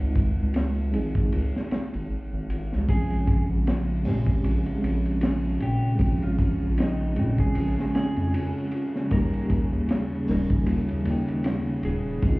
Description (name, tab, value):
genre	trip hop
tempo	77 BPM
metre	4/4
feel	swing 57% on 16ths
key	Bb dorian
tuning	A4 = 441 Hz
part	reed electric piano	accompaniment	0.0-12.4 s	Eb3 to G5	-29 LUFS	equal	fast tremolo, tape echo
part	round analog bass	bass	0.0-12.4 s	Eb1 to Bb2	-26 LUFS	equal	none
part	crunchy breakbeat drum kit	drums	0.2-12.4 s	hi-hat, kick drum, ride cymbal, snare drum	-28 LUFS	equal	none
part	electric slide guitar	melody	2.9-12.4 s	Eb4 to Bb4	-37 LUFS	left 1 dB	vintage 12-bit sampler grit, tape echo
part	warm studio string section	sustained chords	2.9-12.4 s	Db3	-31 LUFS	equal	none
room	studio reverb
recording	heard muffled through a wall, club reverb, vinyl crackle, EQ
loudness	-22 LUFS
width	side -22 dB against mid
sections	0.0-12.4 A section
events	none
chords	0.0 Dbmaj7; 2.9 Bbm7; 9.1 Eb